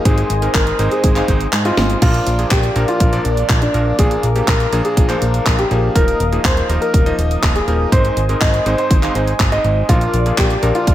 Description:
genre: italo disco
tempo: 122 BPM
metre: 4/4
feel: straight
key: Bb mixolydian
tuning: A4 = 439 Hz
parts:
  - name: warm analog pad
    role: sustained chords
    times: 0.0-10.9 s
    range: Bb4 to Eb6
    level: -23 LUFS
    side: left 2 dB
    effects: wide subtle chorus
  - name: clear electric grand piano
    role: stabs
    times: 0.0-10.9 s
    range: Ab2 to F5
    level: -23 LUFS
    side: right 2 dB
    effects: none
  - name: warm concert grand piano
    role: melody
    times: 0.1-10.9 s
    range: D4 to Eb5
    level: -20 LUFS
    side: left 1 dB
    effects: ping-pong delay
  - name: fat analog bass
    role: bass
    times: 0.1-10.9 s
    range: Eb1 to Ab2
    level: -18 LUFS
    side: equal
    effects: none
  - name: electronic kick drum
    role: drums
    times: 0.1-10.9 s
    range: none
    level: -16 LUFS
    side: equal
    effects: none
  - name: house drum kit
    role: drums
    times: 0.1-10.9 s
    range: crash cymbal, handclaps, hi-hat, snare drum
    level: -22 LUFS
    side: equal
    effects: gated reverb
room: light reverb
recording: none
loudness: -13 LUFS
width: side -13 dB against mid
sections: 0.0-10.9 A section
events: kick drops out 1.5-2.0; drum fill 1.8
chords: 0.1 Ab; 2.0 Bb; 4.0 Bb7; 6.0 Ebsus2; 7.9 Ab; 9.9 Bb

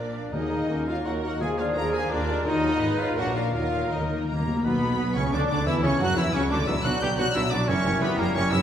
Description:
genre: classical, dramatic, fast romantic movement for symphony orchestra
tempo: 159-182 BPM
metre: 3/4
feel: rubato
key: Eb minor, B minor from 4.7 s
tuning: A4 = 440 Hz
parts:
  - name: warm symphonic violin section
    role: melody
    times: 0.0-8.6 s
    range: D5 to G6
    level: -32 LUFS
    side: left 2 dB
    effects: none
  - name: clear clarinet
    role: second line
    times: 0.0-8.6 s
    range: B3 to A#4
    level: -34 LUFS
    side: left 2 dB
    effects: none
  - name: clear oboe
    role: second line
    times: 0.0-8.6 s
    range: Ab4 to G5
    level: -35 LUFS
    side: equal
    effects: none
  - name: dark symphonic violin section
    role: second line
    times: 0.0-8.6 s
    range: Bb3 to B4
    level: -36 LUFS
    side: left 1 dB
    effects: none
  - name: hollow large flute ensemble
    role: second line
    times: 0.0-8.4 s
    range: Bb4 to F#6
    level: -35 LUFS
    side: left 1 dB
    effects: none
  - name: mellow bassoon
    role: accompaniment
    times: 0.0-8.6 s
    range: B2 to Bb3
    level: -34 LUFS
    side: right 1 dB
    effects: none
  - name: warm symphonic viola section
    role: accompaniment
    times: 0.0-8.6 s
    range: E3 to Cb5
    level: -34 LUFS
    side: right 1 dB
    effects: none
  - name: dark French horn section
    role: sustained chords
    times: 0.0-8.6 s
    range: F#3 to Bb4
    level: -33 LUFS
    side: left 4 dB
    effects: none
  - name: warm trumpet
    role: stabs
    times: 0.0-8.6 s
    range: Bb3 to Bb4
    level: -31 LUFS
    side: equal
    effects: none
  - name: warm symphonic cello section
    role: bass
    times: 0.0-8.6 s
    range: Eb2 to F#3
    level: -32 LUFS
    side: right 2 dB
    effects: none
  - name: warm symphonic double bass section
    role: bass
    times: 0.0-8.6 s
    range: F#1 to F#2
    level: -32 LUFS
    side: right 2 dB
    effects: none
  - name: timpani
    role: percussion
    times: 0.3-4.6 s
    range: Eb3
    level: -32 LUFS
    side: left 2 dB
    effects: none
  - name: mellow tuba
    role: bass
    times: 4.6-8.6 s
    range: F#1 to F#2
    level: -31 LUFS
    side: right 1 dB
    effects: none
room: wet recital hall reverb, RT60 1.8 s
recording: heard from further back in the room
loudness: -22 LUFS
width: side -9 dB against mid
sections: 0.0-4.7 A section; 4.7-8.6 B section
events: timpani fill 3.5-4.7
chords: 0.3 Ebm; 1.4 Bb7/Eb; 2.5 Ebm; 2.8 Abm; 3.2 Bb; 3.5 Eb5; 4.7 Bm; 5.7 F#5; 6.7 Bm; 7.7 F#7b9

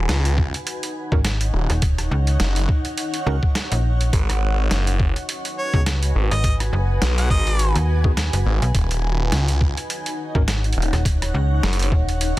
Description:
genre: glitch hop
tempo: 104 BPM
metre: 4/4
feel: swing 56% on 16ths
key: unclear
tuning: A4 = 440 Hz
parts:
  - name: phased detuned saw bass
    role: bass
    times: 0.0-11.9 s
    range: D#1 to C#2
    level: -20 LUFS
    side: equal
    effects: phaser, tube saturation
  - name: granular cloud pad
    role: texture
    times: 0.0-12.4 s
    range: D#4 to G#5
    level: -29 LUFS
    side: equal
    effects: built-in reverb, sidechain pumping
  - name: boom bap sampler-style drum kit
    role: drums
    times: 0.1-12.4 s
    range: hi-hat, rim click, snare drum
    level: -26 LUFS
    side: right 1 dB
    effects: none
  - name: electronic kick drum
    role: drums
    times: 0.4-12.0 s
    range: none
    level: -20 LUFS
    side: equal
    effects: none
  - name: tine electric piano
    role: stabs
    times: 1.1-10.4 s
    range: B3 to A#4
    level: -30 LUFS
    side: right 1 dB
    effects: medium stereo tremolo, vintage 12-bit sampler grit, sidechain pumping, tape echo
  - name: slap-like FM bass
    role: bass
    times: 1.1-12.3 s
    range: D#1 to D#2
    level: -20 LUFS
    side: equal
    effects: none
  - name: clear harmonica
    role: melody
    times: 5.6-7.8 s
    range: C#5 to F#5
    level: -27 LUFS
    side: equal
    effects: tape echo
room: little or no reverb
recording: dense, heavily limited modern master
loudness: -18 LUFS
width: side -17 dB against mid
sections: 0.0-12.4 A section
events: none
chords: 0.0 D#m7; 4.1 G#m7; 8.7 D#m7

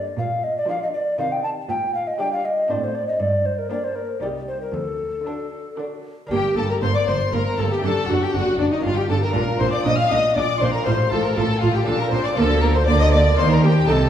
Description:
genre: classical, baroque-style concerto movement with solo episodes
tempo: 119 BPM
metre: 3/4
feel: straight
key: G minor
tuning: A4 = 441 Hz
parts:
  - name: mellow hollow tenor recorder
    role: melody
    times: 0.0-14.1 s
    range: D4 to A5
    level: -23 LUFS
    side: left 1 dB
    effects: none
  - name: warm chamber violin section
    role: melody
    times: 0.0-14.1 s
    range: F#4 to F6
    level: -28 LUFS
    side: left 6 dB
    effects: none
  - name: rich chamber violin section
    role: second line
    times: 0.0-14.1 s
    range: D4 to F5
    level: -26 LUFS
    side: left 2 dB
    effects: none
  - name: dark chamber viola section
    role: accompaniment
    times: 0.0-14.0 s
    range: D3 to F4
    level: -28 LUFS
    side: right 1 dB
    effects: none
  - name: lute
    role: accompaniment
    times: 0.0-14.1 s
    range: D2 to D5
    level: -31 LUFS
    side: right 1 dB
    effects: none
  - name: warm chamber cello section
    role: bass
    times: 0.0-14.1 s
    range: C2 to Eb3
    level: -24 LUFS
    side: right 2 dB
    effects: none
  - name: rich chamber double bass section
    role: bass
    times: 6.3-14.1 s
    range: F#1 to Eb2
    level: -23 LUFS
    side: right 2 dB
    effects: none
room: wet recital hall reverb, RT60 1.4 s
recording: heard from further back in the room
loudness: -18 LUFS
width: side -10 dB against mid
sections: 0.0-6.3 A section; 6.3-14.1 B section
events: none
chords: 0.2 Bb; 1.2 Cm; 1.7 Gm/Bb; 2.7 D7/A; 3.2 Gm; 4.2 Cm; 4.7 D; 6.3 Gm; 7.8 D/F#; 8.8 Gm; 9.3 Bb; 10.9 F/A; 11.9 Bb; 12.4 Bb/D; 13.4 Eb

